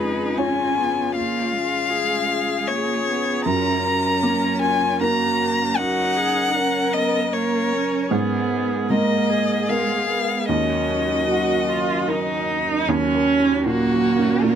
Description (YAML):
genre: neoclassical piano and strings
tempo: 77 BPM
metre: 3/4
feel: rubato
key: Eb minor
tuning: A4 = 442 Hz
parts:
  - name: rich violin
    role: melody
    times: 0.0-14.6 s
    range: Gb4 to Bb5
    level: -22 LUFS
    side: left 4 dB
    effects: none
  - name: warm cello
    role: second line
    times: 0.0-14.6 s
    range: Ab3 to Gb4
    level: -24 LUFS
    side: right 4 dB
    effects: none
  - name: felt-muted upright piano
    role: accompaniment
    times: 0.0-14.6 s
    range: Eb2 to Db5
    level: -25 LUFS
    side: right 2 dB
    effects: none
  - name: rich viola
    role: accompaniment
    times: 0.0-14.6 s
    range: F4 to Bb4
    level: -28 LUFS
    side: right 1 dB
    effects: none
  - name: dark analog pad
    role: sustained chords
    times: 0.0-14.6 s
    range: Gb3 to Bb4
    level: -29 LUFS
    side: equal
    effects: chorus
room: light reverb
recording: close, detailed microphones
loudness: -18 LUFS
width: side -8 dB against mid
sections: 0.0-12.9 A section; 12.9-14.6 B section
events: none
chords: 0.0 Db/F; 3.5 Gb; 8.1 Abmadd9; 10.5 Ebm7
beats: 0.39 | 1.16 1.92 2.69 | 3.48 4.25 5.02 | 5.79 6.57 7.34 | 8.12 8.90 9.69 | 10.49 11.29 12.08 | 12.88 13.66 14.44